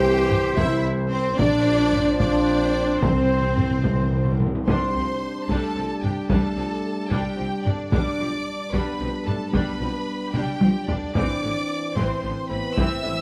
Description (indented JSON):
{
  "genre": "cinematic, epic orchestral film score",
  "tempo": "74 BPM (dotted quarters)",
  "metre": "6/8",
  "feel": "straight",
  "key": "C mixolydian, C major from 4.7 s",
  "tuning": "A4 = 440 Hz",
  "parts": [
    { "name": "rich studio violin section", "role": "melody", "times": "0.0-13.2 s", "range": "C5 to E6", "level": "-34 LUFS", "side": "equal", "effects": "none" },
    { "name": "clear symphonic violin section", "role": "second line", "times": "0.0-13.2 s", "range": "D4 to G5", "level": "-35 LUFS", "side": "equal", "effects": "none" },
    { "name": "clear symphonic viola section", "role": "accompaniment", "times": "0.0-13.1 s", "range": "D3 to G4", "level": "-35 LUFS", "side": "equal", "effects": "none" },
    { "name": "mellow French horn section", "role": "sustained chords", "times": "0.0-13.2 s", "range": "D3 to G4", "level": "-30 LUFS", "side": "equal", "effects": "none" },
    { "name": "mellow trombone section", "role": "sustained chords", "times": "0.0-13.2 s", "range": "E3 to D4", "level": "-32 LUFS", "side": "equal", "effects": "none" },
    { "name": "clear trumpet section", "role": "stabs", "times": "0.0-4.4 s", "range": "C5", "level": "-31 LUFS", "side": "equal", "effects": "none" },
    { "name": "rich symphonic cello section", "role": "bass", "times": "0.0-13.1 s", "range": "A2 to G4", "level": "-34 LUFS", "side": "equal", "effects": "none" },
    { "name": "rich symphonic double bass section", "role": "bass", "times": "0.0-13.1 s", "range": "A1 to C2", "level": "-31 LUFS", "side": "equal", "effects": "none" },
    { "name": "taiko ensemble", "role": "drums", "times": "0.3-13.2 s", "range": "none", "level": "-26 LUFS", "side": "equal", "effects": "none" },
    { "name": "timpani", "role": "percussion", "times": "3.0-5.4 s", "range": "C3", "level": "-29 LUFS", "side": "equal", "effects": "none" }
  ],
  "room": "moderate scoring stage reverb, RT60 1.5 s",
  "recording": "close, detailed microphones",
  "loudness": "-23 LUFS",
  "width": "mono",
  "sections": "0.0-4.7 A section; 4.7-13.2 B section",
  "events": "timpani fill 3.0-4.7; drum fill 10.3-11.2",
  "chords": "0.0 C; 1.4 Bbadd9; 3.0 C; 4.7 Csus2; 7.9 G/B; 11.2 Am"
}